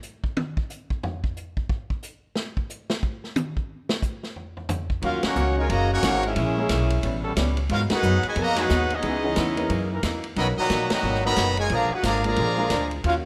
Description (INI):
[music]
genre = jazz, big band swing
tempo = 180 BPM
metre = 4/4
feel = swing 62% on 8ths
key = Eb minor from 5.0 s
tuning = A4 = 440 Hz
[part]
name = vintage drum kit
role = drums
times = 0.0-13.1 s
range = hi-hat, kick drum, ride cymbal, snare drum, toms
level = -32 LUFS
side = equal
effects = none
[part]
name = brilliant trumpet section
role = melody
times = 5.0-13.2 s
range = Db4 to B5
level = -29 LUFS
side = equal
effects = none
[part]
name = mellow trombone section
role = second line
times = 5.0-13.1 s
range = A#2 to Gb4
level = -29 LUFS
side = equal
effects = none
[part]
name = archtop guitar, miked and amplified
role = accompaniment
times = 5.0-13.3 s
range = Gb2 to Gb4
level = -33 LUFS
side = equal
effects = none
[part]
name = warm upright piano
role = accompaniment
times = 5.0-12.7 s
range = Fb3 to Bb4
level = -33 LUFS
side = equal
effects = none
[part]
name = upright bass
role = bass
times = 5.0-13.3 s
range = Gb1 to Ab2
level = -28 LUFS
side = equal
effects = none
[part]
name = clear trombone section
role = sustained chords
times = 5.6-12.7 s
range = Fb3 to Bb4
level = -37 LUFS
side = equal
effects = none
[sound]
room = moderate recital hall reverb, RT60 1.4 s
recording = none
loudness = -25 LUFS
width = mono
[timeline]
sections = 0.0-5.0 A section; 5.0-13.3 B section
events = drum solo 0.0-5.0; band accent 5.2, 7.9, 10.9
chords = 0.0 N.C.; 5.0 Ebm7; 6.4 Bbm7b5; 7.0 A9; 7.7 Abm7; 9.0 Dbm7; 9.7 Gb13; 10.4 Bmaj7; 11.7 Bb7